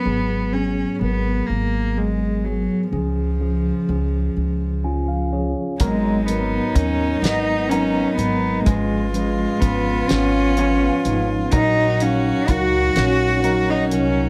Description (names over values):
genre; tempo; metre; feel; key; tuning
acoustic folk-pop ballad; 42 BPM (dotted quarters); 6/8; straight; unclear; A4 = 441 Hz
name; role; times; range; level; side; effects
warm cello; melody; 0.0-14.3 s; E#3 to F#4; -24 LUFS; equal; none
mellow tine electric piano; accompaniment; 0.0-14.3 s; G#1 to G#5; -27 LUFS; equal; none
upright bass; bass; 0.1-14.3 s; G#1 to D#2; -26 LUFS; equal; none
dark violin; second line; 5.8-14.3 s; D#4 to F#4; -28 LUFS; equal; none
electric guitar through a small old amp; arpeggios; 5.8-14.3 s; F#3 to A#4; -30 LUFS; equal; tremolo
cloth-damped thuddy drum kit; drums; 5.8-14.1 s; hi-hat, kick drum, snare drum; -24 LUFS; equal; none
room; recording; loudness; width
moderate studio reverb, RT60 0.6 s; none; -20 LUFS; mono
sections
0.0-5.8 A section; 5.8-14.3 B section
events
none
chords
0.1 G#m7; 2.9 C#; 5.8 G#m9; 8.7 C#7/G#; 11.5 F#6/A#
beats
| 0.05 1.49 | 2.92 4.36 | 5.79 7.23 | 8.66 10.10 | 11.53 12.96